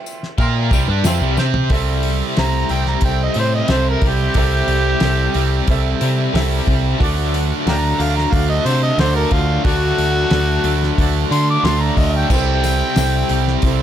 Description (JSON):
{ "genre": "classic rock", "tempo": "91 BPM", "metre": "4/4", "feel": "straight", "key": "C lydian", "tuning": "A4 = 440 Hz", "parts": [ { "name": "bright upright piano", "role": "accompaniment", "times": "0.0-13.8 s", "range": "A3 to C6", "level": "-28 LUFS", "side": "right 6 dB", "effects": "none" }, { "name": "tambourine", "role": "percussion", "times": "0.1-1.5, 12.3-13.7 s", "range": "none", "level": "-34 LUFS", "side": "left 11 dB", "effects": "none" }, { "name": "damped 70s drum kit", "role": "drums", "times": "0.2-13.8 s", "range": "crash cymbal, hi-hat, kick drum, snare drum, toms", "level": "-21 LUFS", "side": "equal", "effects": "none" }, { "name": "overdriven electric guitar", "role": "riff", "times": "0.4-13.8 s", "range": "C3 to C5", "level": "-24 LUFS", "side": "left 14 dB", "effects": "tremolo" }, { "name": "tight distorted guitar", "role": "riff", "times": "0.4-13.8 s", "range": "C3 to C5", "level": "-22 LUFS", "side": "right 14 dB", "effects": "distortion" }, { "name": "growling picked electric bass", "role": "bass", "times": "0.4-13.8 s", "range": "C2 to D3", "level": "-18 LUFS", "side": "equal", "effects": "overdrive" }, { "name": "overdriven harmonica", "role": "melody", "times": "2.4-13.6 s", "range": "F4 to D6", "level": "-21 LUFS", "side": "equal", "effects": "none" } ], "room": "small room ambience", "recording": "none", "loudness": "-14 LUFS", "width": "side -10 dB against mid", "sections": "0.0-1.7 A section; 1.7-13.8 B section", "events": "drum fill 1.4-1.7; harmonica solo 1.7-13.8", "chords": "0.0 C; 1.7 C6; 7.0 D; 12.3 C6" }